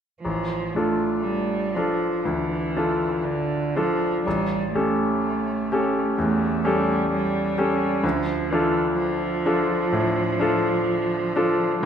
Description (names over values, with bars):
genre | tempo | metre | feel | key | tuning
classical, slow romantic movement for piano quartet | 59-65 BPM | 4/4 | rubato | D minor | A4 = 439 Hz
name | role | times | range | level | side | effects
rich cello | second line | 0.2-11.9 s | D3 to A3 | -26 LUFS | right 4 dB | none
bright grand piano | accompaniment | 0.2-11.9 s | A1 to A4 | -22 LUFS | left 1 dB | none
room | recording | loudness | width
wet concert hall reverb, RT60 1.8 s | minimal, uncompressed stereo recording | -21 LUFS | side -8 dB against mid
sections
0.2-11.9 A section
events
none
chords
0.2 Dm/A; 4.3 A7; 8.0 Dm